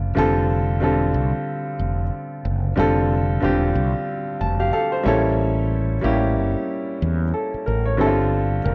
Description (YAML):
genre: R&B, neo-soul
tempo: 92 BPM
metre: 4/4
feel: swing 59% on 16ths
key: F major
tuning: A4 = 436 Hz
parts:
  - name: clear concert grand piano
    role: accompaniment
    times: 0.0-8.7 s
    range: D3 to A5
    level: -23 LUFS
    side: equal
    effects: plate reverb
  - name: mellow fretless electric bass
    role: bass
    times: 0.0-8.7 s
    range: E1 to E2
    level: -24 LUFS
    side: equal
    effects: transformer saturation
room: light reverb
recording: worn, warbling old tape, cassette tape, warbly pitch drift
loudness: -21 LUFS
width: mono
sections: 0.0-8.7 A section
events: grand piano fill 4.1-5.4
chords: 0.2 Fmaj7; 5.1 A7b9; 8.0 Csus24/G